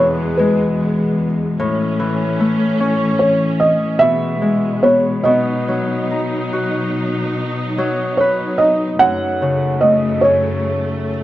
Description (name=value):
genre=children's music, lullaby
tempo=49 BPM (dotted quarters)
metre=6/8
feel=rubato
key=E major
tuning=A4 = 440 Hz
part: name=felt-muted upright piano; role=melody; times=0.0-11.1 s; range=B4 to F#5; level=-16 LUFS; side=right 2 dB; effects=none
part: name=Celtic harp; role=accompaniment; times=0.0-11.2 s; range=E2 to B4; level=-18 LUFS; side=left 2 dB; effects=none
part: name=clear symphonic string section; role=sustained chords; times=0.0-11.2 s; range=E2 to D#4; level=-22 LUFS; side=equal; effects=none
room=moderate studio reverb, RT60 0.6 s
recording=worn, warbling old tape, cassette tape, warbly pitch drift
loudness=-14 LUFS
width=side -14 dB against mid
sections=0.0-11.2 A section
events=none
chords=0.0 E; 1.6 A; 4.0 E/B; 5.2 B; 9.0 F#m